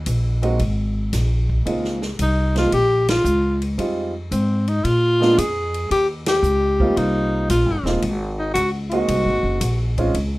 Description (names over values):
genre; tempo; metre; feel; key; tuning
jazz, small-group swing and bop; 113 BPM; 4/4; swing 68% on 8ths; unclear; A4 = 440 Hz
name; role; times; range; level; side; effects
upright bass; bass; 0.0-10.4 s; Eb1 to Bb2; -21 LUFS; equal; none
vintage drum kit; drums; 0.1-10.3 s; hi-hat, kick drum, ride cymbal, snare drum; -30 LUFS; equal; none
warm grand piano; accompaniment; 0.4-10.1 s; G3 to Gb4; -22 LUFS; right 2 dB; none
breathy tenor saxophone; melody; 2.2-9.9 s; C4 to Ab4; -20 LUFS; left 1 dB; none
room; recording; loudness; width
moderate studio reverb, RT60 0.5 s; rough home demo mix; -17 LUFS; side -19 dB against mid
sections
0.0-10.4 A section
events
band accent 3.0, 6.2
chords
0.0 Ebm; 0.6 Absus2; 1.7 Dbmaj13; 3.8 Fm7; 4.8 Bb7b9; 5.9 Eb69; 8.0 Ab7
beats
0.07 0.60 1.13 | 1.66 2.19 2.72 3.25 | 3.78 4.31 4.84 5.37 | 5.90 6.43 6.96 7.49 | 8.02 8.55 9.08 9.61 | 10.14